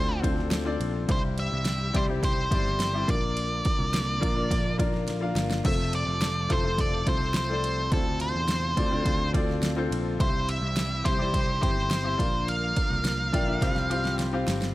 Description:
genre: piano-driven pop.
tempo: 105 BPM.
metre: 4/4.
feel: straight.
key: unclear.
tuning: A4 = 440 Hz.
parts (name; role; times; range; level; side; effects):
octave-fuzz lead guitar; melody; 0.0-14.2 s; A4 to F5; -30 LUFS; right 1 dB; distortion.
clear concert grand piano; accompaniment; 0.0-14.7 s; G2 to C6; -31 LUFS; left 3 dB; none.
warm studio string section; sustained chords; 0.0-14.7 s; C3 to Bb4; -40 LUFS; right 2 dB; none.
picked electric bass; bass; 0.0-14.7 s; F1 to E2; -30 LUFS; equal; none.
deep house drum kit; drums; 0.2-14.7 s; crash cymbal, kick drum, ride cymbal, snare drum; -28 LUFS; equal; overdrive.
room: light reverb, digital ambience.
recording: none.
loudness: -24 LUFS.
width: side -16 dB against mid.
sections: 0.0-14.7 A section.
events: drum fill 5.1-5.6, 13.6-14.7; grand piano fill 13.1-14.7.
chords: 0.0 Dm7; 1.1 C; 3.1 Bb; 5.6 F; 7.9 Dm7; 10.2 C; 12.2 Bb; 13.6 Csus4.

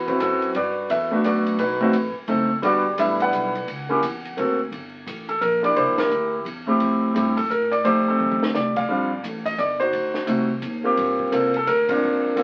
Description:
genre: jazz piano trio.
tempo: 173 BPM.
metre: 3/4.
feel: swing 63% on 8ths.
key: B minor, G minor from 4.7 s.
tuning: A4 = 445 Hz.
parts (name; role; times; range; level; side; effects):
clear concert grand piano; melody; 0.0-12.4 s; G3 to F#5; -22 LUFS; equal; none.
upright bass; bass; 0.0-12.4 s; F#1 to A2; -38 LUFS; equal; none.
compact cocktail drum kit; drums; 0.1-12.4 s; hi-hat, kick drum, ride cymbal, snare drum, toms; -37 LUFS; equal; none.
room: moderate studio reverb, RT60 0.6 s.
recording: very old 78 rpm record, vinyl crackle, nothing above 11.0 kHz.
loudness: -22 LUFS.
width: mono.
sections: 0.0-4.7 A section; 4.7-12.4 B section.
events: band accent 5.9, 8.7, 11.8; drum fill 8.2-8.5.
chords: 0.0 D13 (rootless); 0.6 Gmaj9; 1.6 B7b9; 2.6 Em9; 3.7 F#7(no3); 4.4 D7b13; 4.7 Gmadd9; 5.8 C7; 6.8 Fmaj7; 7.8 F13; 8.9 Bb6; 9.9 D7b9; 11.0 Gm11.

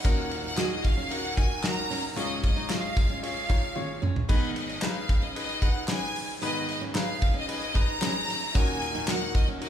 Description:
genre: piano-driven pop.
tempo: 113 BPM.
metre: 4/4.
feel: straight.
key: unclear.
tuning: A4 = 438 Hz.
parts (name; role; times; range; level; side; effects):
clear studio violin section; melody; 0.0-9.7 s; D#5 to A#5; -31 LUFS; equal; none.
bright concert grand piano; accompaniment; 0.0-9.7 s; C#2 to D#5; -34 LUFS; left 3 dB; none.
picked steel-string acoustic guitar; riff; 0.0-9.7 s; B3 to F#4; -37 LUFS; right 5 dB; none.
loose indie drum kit; drums; 0.0-9.7 s; crash cymbal, handclaps, hi-hat, kick drum, ride cymbal, snare drum, toms; -27 LUFS; equal; none.
room: light reverb.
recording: none.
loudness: -25 LUFS.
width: side -10 dB against mid.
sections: 0.0-9.7 A section.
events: drum fill 3.8-4.3.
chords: 0.0 D#m; 2.2 C#; 4.3 G#m; 8.5 D#m.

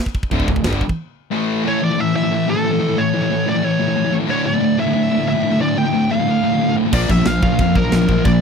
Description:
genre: heavy metal.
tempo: 181 BPM.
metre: 4/4.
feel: straight.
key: D harmonic minor.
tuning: A4 = 440 Hz.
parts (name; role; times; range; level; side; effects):
tight metal drum kit; drums; 0.1-1.0, 6.9-8.3 s; china cymbal, crash cymbal, kick drum, snare drum; -20 LUFS; right 1 dB; none.
distorted electric guitar; riff; 0.3-8.4 s; D2 to Bb3; -20 LUFS; left 12 dB; overdrive.
thick fuzz guitar; riff; 0.3-8.4 s; D2 to Bb3; -22 LUFS; equal; distortion.
tight distorted guitar; riff; 0.3-8.4 s; D2 to Bb3; -22 LUFS; right 14 dB; distortion.
fuzz fingered electric bass; bass; 0.3-0.8, 6.9-8.4 s; D1 to F2; -19 LUFS; right 1 dB; overdrive.
high-gain lead guitar; melody; 1.7-8.4 s; A4 to G5; -21 LUFS; equal; distortion, tape echo.
room: little or no reverb.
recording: dry, close 1970s-style studio recording.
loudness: -15 LUFS.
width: side -6 dB against mid.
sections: 0.0-1.6 A section; 1.6-8.4 B section.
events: break 1.0-1.6.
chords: 0.0 D5; 1.3 A5; 4.3 Dm; 6.9 Bb.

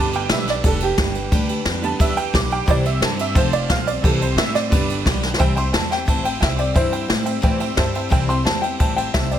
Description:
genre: rockabilly.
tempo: 176 BPM.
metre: 4/4.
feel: straight.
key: C major.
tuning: A4 = 440 Hz.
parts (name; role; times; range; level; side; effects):
picked steel-string acoustic guitar; accompaniment; 0.0-9.4 s; C3 to C5; -27 LUFS; left 4 dB; plate reverb.
tack piano; accompaniment; 0.0-9.4 s; D3 to D6; -24 LUFS; right 5 dB; plate reverb.
upright bass; bass; 0.0-9.4 s; F1 to A2; -24 LUFS; left 1 dB; none.
jazz brush drum kit; drums; 0.1-9.4 s; kick drum, ride cymbal, snare drum; -20 LUFS; equal; none.
clear upright piano; melody; 5.6-9.4 s; E4 to C6; -24 LUFS; left 3 dB; plate reverb.
room: light reverb.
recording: none.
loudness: -17 LUFS.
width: side -10 dB against mid.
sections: 0.0-5.4 A section; 5.4-9.4 B section.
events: honky-tonk piano solo 0.0-5.4; drum fill 5.2; honky-tonk piano fill 7.4-8.1.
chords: 0.0 G; 2.7 C; 3.4 F; 4.0 C; 4.7 G; 5.4 C.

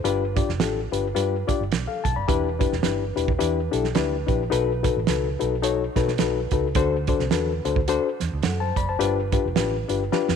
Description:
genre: uptempo 1960s-style soul.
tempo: 107 BPM.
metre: 4/4.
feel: swing 58% on 8ths.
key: unclear.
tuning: A4 = 436 Hz.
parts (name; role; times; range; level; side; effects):
reed electric piano; accompaniment; 0.0-10.3 s; G2 to B5; -24 LUFS; left 9 dB; none.
vintage muted fingered electric bass; bass; 0.0-10.4 s; E1 to B2; -28 LUFS; right 2 dB; none.
warm soul drum kit; drums; 0.0-10.4 s; hi-hat, kick drum, snare drum; -26 LUFS; right 6 dB; none.
room: moderate echo chamber reverb, RT60 1.9 s, small room ambience.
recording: 1960s-style stereo with parts hard left and right.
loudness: -21 LUFS.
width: side -7 dB against mid.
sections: 0.0-10.4 A section.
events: drum fill 10.1.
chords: 0.0 G7; 2.3 Em7; 4.5 B7; 6.8 D7; 9.0 G7.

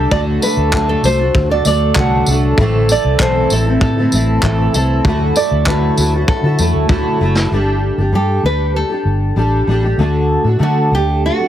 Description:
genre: acoustic pop.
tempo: 97 BPM.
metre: 4/4.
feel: straight.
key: unclear.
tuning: A4 = 440 Hz.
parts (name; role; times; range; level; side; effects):
nylon-string guitar; melody; 0.0-11.5 s; F#4 to F#5; -19 LUFS; right 2 dB; none.
fingerpicked steel-string acoustic guitar; accompaniment; 0.0-11.5 s; A2 to A4; -17 LUFS; equal; double-tracked left and right.
percussive tonewheel organ; sustained chords; 0.0-7.5 s; D3 to A4; -27 LUFS; equal; overdrive, slow rotary speaker.
vintage muted fingered electric bass; bass; 0.0-11.3 s; F#1 to D3; -16 LUFS; equal; none.
vintage brush drum kit; drums; 0.1-7.5 s; handclaps, kick drum, snare drum, tambourine; -18 LUFS; equal; none.
room: little or no reverb.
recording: heavily compressed radio sound.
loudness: -12 LUFS.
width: side -11 dB against mid.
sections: 0.0-7.5 A section; 7.5-11.5 B section.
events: drum fill 6.9-7.5.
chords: 0.1 D; 2.6 Am; 5.0 Dadd9; 7.5 Gsus2; 10.0 D.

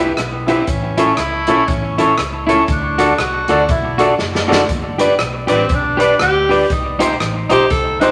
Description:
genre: ska.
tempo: 120 BPM.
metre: 4/4.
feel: swing 60% on 8ths.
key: G major.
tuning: A4 = 440 Hz.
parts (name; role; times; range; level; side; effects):
electric guitar at the edge of break-up; accompaniment; 0.0-8.1 s; Eb4 to D5; -19 LUFS; equal; spring reverb, tape echo.
clear upright piano; stabs; 0.0-8.1 s; C#4 to C5; -22 LUFS; equal; none.
vintage muted fingered electric bass; bass; 0.0-8.1 s; F#1 to D2; -27 LUFS; equal; none.
warm tenor saxophone; melody; 0.2-8.1 s; B3 to B4; -21 LUFS; equal; none.
swinging big-band drum kit; drums; 0.2-8.1 s; hi-hat, kick drum, rim click, snare drum; -24 LUFS; equal; none.
room: wet studio reverb, RT60 0.7 s.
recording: none.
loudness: -15 LUFS.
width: mono.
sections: 0.0-8.1 A section.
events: tenor saxophone solo 0.0-8.1; drum fill 4.2-4.7.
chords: 0.0 Em; 0.7 A; 2.7 D; 4.7 G; 6.7 Cm.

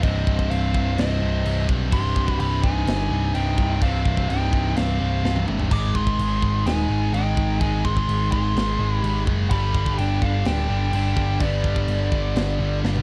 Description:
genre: heavy metal.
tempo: 126 BPM.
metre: 4/4.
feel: straight.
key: C harmonic minor.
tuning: A4 = 441 Hz.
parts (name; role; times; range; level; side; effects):
dark smooth lead guitar; melody; 0.0-12.8 s; D5 to D6; -31 LUFS; equal; overdrive, delay.
lead guitar through a small cranked amp; second line; 0.0-12.8 s; B3 to Ab4; -36 LUFS; equal; overdrive, delay.
biting overdriven guitar; riff; 0.0-13.0 s; C2 to Ab3; -32 LUFS; equal; none.
heavy high-gain guitar; riff; 0.0-13.0 s; C2 to Ab3; -36 LUFS; equal; distortion.
heavy high-gain guitar; riff; 0.0-13.0 s; C2 to Ab3; -34 LUFS; equal; distortion.
overdriven picked electric bass; bass; 0.0-13.0 s; C1 to B1; -26 LUFS; equal; none.
tight metal drum kit; drums; 0.0-13.0 s; crash cymbal, kick drum, snare drum, splash cymbal, toms; -29 LUFS; equal; none.
room: little or no reverb.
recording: dark, warm production.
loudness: -22 LUFS.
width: mono.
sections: 0.0-13.0 A section.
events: drum fill 5.2-5.7, 12.8.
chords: 0.0 Cm; 5.7 Ab; 9.5 G.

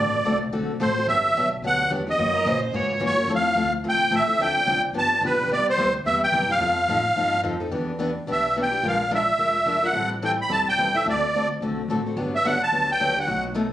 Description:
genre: acoustic string swing (jazz manouche).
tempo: 217 BPM.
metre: 4/4.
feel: swing 58% on 8ths.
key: unclear.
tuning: A4 = 440 Hz.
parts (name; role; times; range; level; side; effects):
musette accordion; melody; 0.0-13.4 s; B4 to B5; -21 LUFS; right 1 dB; none.
picked steel-string acoustic guitar; accompaniment; 0.0-13.7 s; B2 to A#4; -26 LUFS; left 2 dB; none.
upright bass; bass; 0.0-13.7 s; E1 to A#2; -33 LUFS; right 1 dB; none.
dark violin; second line; 2.4-3.0 s; A#4 to C#5; -28 LUFS; right 3 dB; none.
room: moderate club reverb, RT60 0.5 s.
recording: recorded on a phone in the room, club reverb, compression, faint mains hum.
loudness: -20 LUFS.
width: side -13 dB against mid.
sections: 0.0-7.7 A section; 7.7-13.7 B section.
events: none.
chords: 0.0 D7; 1.1 Gmaj7; 2.2 F#13; 3.3 Fmaj7; 4.4 Dm7; 5.0 G7; 5.5 Cmaj7; 6.6 F9; 7.7 Em7; 8.8 A#7; 9.9 Am7; 11.1 D7; 12.2 Gmaj7.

